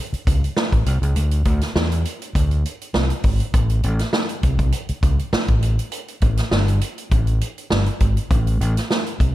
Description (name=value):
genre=funk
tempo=101 BPM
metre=4/4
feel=straight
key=unclear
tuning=A4 = 440 Hz
part: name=overdriven fingered electric bass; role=bass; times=0.1-9.3 s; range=G1 to E2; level=-19 LUFS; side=equal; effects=none
part: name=swinging big-band drum kit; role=drums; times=0.1-9.3 s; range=hi-hat, kick drum, snare drum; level=-21 LUFS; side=equal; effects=none
room=little or no reverb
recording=none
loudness=-18 LUFS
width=side -15 dB against mid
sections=0.0-9.3 A section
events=none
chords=none